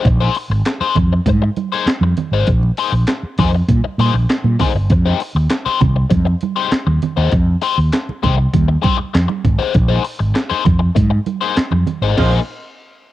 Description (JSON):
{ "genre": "funk", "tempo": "99 BPM", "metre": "4/4", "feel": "straight", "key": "unclear", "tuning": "A4 = 440 Hz", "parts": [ { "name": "crunchy overdriven guitar", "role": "accompaniment", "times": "0.0-12.4 s", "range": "Ab3 to C5", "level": "-21 LUFS", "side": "left 8 dB", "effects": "wah, cassette tape" }, { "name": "congas", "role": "percussion", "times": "0.0-12.0 s", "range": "none", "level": "-24 LUFS", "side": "right 9 dB", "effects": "none" }, { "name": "mellow fretless electric bass", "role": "bass", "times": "0.1-12.4 s", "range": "G1 to Bb2", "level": "-14 LUFS", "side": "equal", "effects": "none" }, { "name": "breakbeat sampler-style drum kit", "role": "drums", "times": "0.1-12.4 s", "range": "crash cymbal, handclaps, hi-hat, kick drum, snare drum", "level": "-18 LUFS", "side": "equal", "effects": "cassette tape" }, { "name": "mellow horn section", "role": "second line", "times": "12.2-12.3 s", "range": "Ab3 to C5", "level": "-24 LUFS", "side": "right 8 dB", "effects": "cassette tape" } ], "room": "digital ambience", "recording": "home recording on cassette", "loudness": "-13 LUFS", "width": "side -14 dB against mid", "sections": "0.0-13.1 A section", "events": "band accent 12.2-13.1", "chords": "0.0 Bb9sus4; 4.9 Fm9; 9.8 Bb9sus4" }